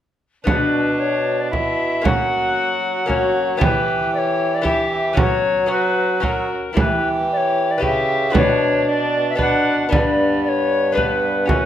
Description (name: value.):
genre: classical, renaissance-style consort dance.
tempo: 114 BPM.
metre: 3/4.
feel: straight.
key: B harmonic minor.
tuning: A4 = 440 Hz.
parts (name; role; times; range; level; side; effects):
lute; accompaniment; 0.4-11.7 s; F#2 to B4; -24 LUFS; left 2 dB; none.
tenor recorder; melody; 0.5-11.7 s; A#4 to F#5; -20 LUFS; left 4 dB; none.
dark violin; second line; 0.5-11.7 s; B3 to G4; -23 LUFS; right 4 dB; none.
warm bassoon; bass; 0.5-11.7 s; F#2 to F#3; -24 LUFS; right 1 dB; none.
frame drum; percussion; 0.5-11.7 s; none; -21 LUFS; right 2 dB; none.
room: moderate recital hall reverb, RT60 1.4 s.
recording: none.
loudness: -16 LUFS.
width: side -10 dB against mid.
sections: 0.5-11.7 A section.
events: none.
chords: 0.5 Bm; 2.0 F#; 3.6 Em; 5.2 F#sus4; 6.2 F#; 6.8 Em; 8.3 Bm; 9.9 G.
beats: | 0.46 0.99 1.52 | 2.04 2.57 3.09 | 3.61 4.13 4.65 | 5.18 5.70 6.24 | 6.77 7.29 7.82 | 8.34 8.87 9.39 | 9.91 10.44 10.96 | 11.49.